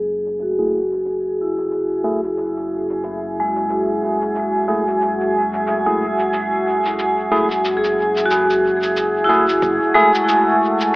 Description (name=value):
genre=ambient dub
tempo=91 BPM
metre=4/4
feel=swing 59% on 16ths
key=F# minor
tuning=A4 = 445 Hz
part: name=deep dark ambient pad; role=sustained chords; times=1.5-11.0 s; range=F#4 to G#5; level=-21 LUFS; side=equal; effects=chorus, built-in reverb
part: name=vibraphone with hard mallets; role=arpeggios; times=0.0-11.0 s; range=G#3 to G#4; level=-20 LUFS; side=equal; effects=low-pass filter, dub echo
part: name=round analog bass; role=bass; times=0.0-9.8 s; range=F#1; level=-34 LUFS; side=equal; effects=none
part: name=drifting glass-harmonics texture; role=texture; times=0.0-11.0 s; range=A3 to G#4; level=-27 LUFS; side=equal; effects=chorus, built-in reverb
part: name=cabasa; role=drums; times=0.3-10.9 s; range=none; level=-31 LUFS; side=equal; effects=dub echo
part: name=bell-like tine electric piano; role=stabs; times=0.6-10.1 s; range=A3 to G#4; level=-22 LUFS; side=equal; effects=vintage 12-bit sampler grit, low-pass filter, dub echo
part: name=electronic kick drum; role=drums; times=9.6-9.8 s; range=none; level=-33 LUFS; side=equal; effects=overdrive
room=wet spring reverb, RT60 2.5 s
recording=echo-heavy mix, low-pass filter, AM radio sound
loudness=-16 LUFS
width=side -21 dB against mid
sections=0.0-9.6 A section; 9.6-11.0 B section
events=filter sweep on tine electric piano 0.0-9.6; filter sweep on vibraphone 0.0-9.6; filter sweep 0.0-9.6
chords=0.0 F#7sus2; 9.6 F#m9